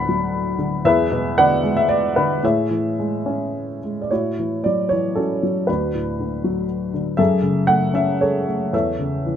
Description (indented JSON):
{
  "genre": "classical, lyrical solo piano",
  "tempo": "102-122 BPM",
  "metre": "3/4",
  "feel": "rubato",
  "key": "A major",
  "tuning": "A4 = 443 Hz",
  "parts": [
    { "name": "warm upright piano", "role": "solo", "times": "0.0-9.4 s", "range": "D2 to B5", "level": "-18 LUFS", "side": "equal", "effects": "none" }
  ],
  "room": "light reverb",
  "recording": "dark, warm production",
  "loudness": "-18 LUFS",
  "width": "side -9 dB against mid",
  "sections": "0.0-4.1 A section; 4.1-9.4 A section",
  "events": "none",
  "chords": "0.0 D6; 0.8 E7; 2.4 Amaj7; 4.1 A6; 5.7 D; 7.2 F#madd9; 8.7 A/E",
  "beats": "0.33 | 0.85 1.37 1.89 | 2.43 2.97 3.53 | 4.10 4.65 5.17 | 5.68 6.19 6.70 | 7.19 7.69 8.21 | 8.73 9.26"
}